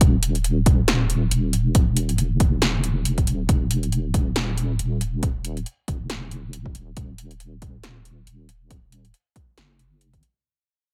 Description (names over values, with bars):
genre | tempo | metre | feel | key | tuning
deep dubstep | 138 BPM | 4/4 | swing 57% on 16ths, half-time | Eb minor | A4 = 439 Hz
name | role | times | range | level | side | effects
deep soft wobble bass | bass | 0.0-10.2 s | Eb1 to Gb1 | -26 LUFS | equal | chorus
deep house drum kit | drums | 0.0-10.3 s | hi-hat, snare drum | -28 LUFS | equal | overdrive
electronic kick drum | drums | 0.0-10.2 s | none | -22 LUFS | equal | overdrive
room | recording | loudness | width
little or no reverb | none | -22 LUFS | mono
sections
0.0-10.4 A section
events
fade-out 0.0-10.4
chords
none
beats
| 0.01 0.44 0.88 1.31 | 1.75 2.18 2.62 3.05 | 3.49 3.92 4.36 4.79 | 5.23 5.66 6.10 6.53 | 6.97 7.40 7.83 8.27 | 8.71 9.14 9.57 10.01